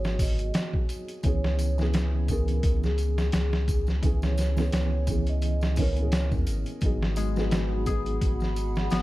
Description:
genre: trip hop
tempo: 86 BPM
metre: 4/4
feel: swing 56% on 16ths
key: unclear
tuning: A4 = 439 Hz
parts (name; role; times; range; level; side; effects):
- vibraphone with soft mallets; melody; 0.0-6.3 s; G#4 to D#5; -36 LUFS; right 1 dB; vintage 12-bit sampler grit, tape echo
- felt-muted upright piano; accompaniment; 0.0-9.0 s; E3 to A#4; -33 LUFS; equal; harmonic tremolo, low-pass filter
- warm sub bass; bass; 0.0-9.0 s; G#1 to E2; -26 LUFS; equal; tube saturation
- trip hop sampler-style drum kit; drums; 0.0-9.0 s; hi-hat, kick drum, snare drum; -28 LUFS; equal; none
- tambourine and triangle; percussion; 0.0-9.0 s; none; -48 LUFS; right 1 dB; none
- warbly tape-like pad; sustained chords; 6.8-9.0 s; G#4 to B5; -39 LUFS; right 2 dB; chorus, built-in reverb
- concert harp; arpeggios; 7.2-9.0 s; G#3 to G#4; -34 LUFS; left 7 dB; tape echo
room: small room ambience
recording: vinyl crackle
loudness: -24 LUFS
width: side -17 dB against mid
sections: 0.0-9.0 A section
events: none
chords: 0.0 G#m7; 1.2 C#m7; 6.8 G#m7

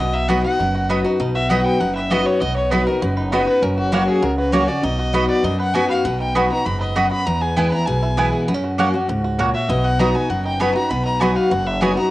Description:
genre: bluegrass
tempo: 198 BPM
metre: 4/4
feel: straight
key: B major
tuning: A4 = 444 Hz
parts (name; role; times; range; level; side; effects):
- bluegrass banjo; melody; 0.0-12.1 s; B3 to B4; -27 LUFS; right 2 dB; cassette tape, analog delay
- warm fiddle; melody; 0.0-12.1 s; D#4 to B5; -23 LUFS; left 1 dB; cassette tape
- picked steel-string acoustic guitar; accompaniment; 0.0-12.1 s; E2 to F#4; -20 LUFS; left 1 dB; cassette tape
- upright bass; bass; 0.0-11.9 s; F#1 to F#2; -25 LUFS; equal; none
- mandolin; stabs; 0.3-11.9 s; A#3 to B5; -24 LUFS; right 3 dB; cassette tape
room: moderate spring reverb, RT60 1.7 s, studio reverb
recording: home recording on cassette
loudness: -16 LUFS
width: side -16 dB against mid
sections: 0.0-6.1 A section; 6.1-12.1 A section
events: fiddle solo 0.0-12.1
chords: 0.0 B; 3.6 F#; 4.8 B; 7.3 E; 8.5 F#; 9.7 B

